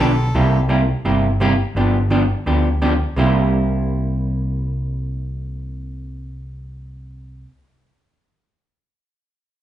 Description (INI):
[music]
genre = country, western swing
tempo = 171 BPM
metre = 4/4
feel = swing 63% on 8ths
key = C mixolydian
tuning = A4 = 440 Hz
[part]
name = clear fiddle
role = melody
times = 0.0-0.6 s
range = A4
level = -27 LUFS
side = left 2 dB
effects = none
[part]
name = vintage hollow-body jazz guitar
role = accompaniment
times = 0.0-7.5 s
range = C3 to G4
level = -20 LUFS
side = right 1 dB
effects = none
[part]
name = fretless electric bass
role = bass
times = 0.0-7.4 s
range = G1 to D2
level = -20 LUFS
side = equal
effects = none
[sound]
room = moderate large studio reverb, RT60 0.8 s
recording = band playing live in one room, nothing above 11.0 kHz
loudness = -16 LUFS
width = side -12 dB against mid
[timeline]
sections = 0.0-3.2 A section; 3.2-6.0 B section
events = none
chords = 0.3 C7; 1.8 G7; 3.2 C7